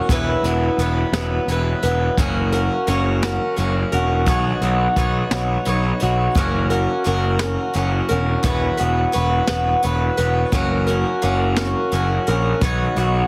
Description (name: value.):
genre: quiet-loud alternative rock.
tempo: 58 BPM (dotted quarters).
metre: 6/8.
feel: straight.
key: F# mixolydian.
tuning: A4 = 437 Hz.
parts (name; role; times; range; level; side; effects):
picked swing-style acoustic guitar; arpeggios; 0.0-13.3 s; E2 to C#5; -23 LUFS; equal; tape echo.
fuzz picked electric bass; bass; 0.1-13.2 s; E1 to B1; -23 LUFS; equal; overdrive.
jazz brush drum kit; drums; 0.1-13.1 s; hi-hat, kick drum, snare drum; -27 LUFS; equal; none.
room: little or no reverb.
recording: heavily compressed radio sound.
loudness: -19 LUFS.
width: mono.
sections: 0.0-13.3 A section.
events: none.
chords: 0.1 Esus2; 2.2 F#; 4.3 Badd9; 6.4 F#; 8.4 Esus2; 10.5 F#; 12.6 Badd9.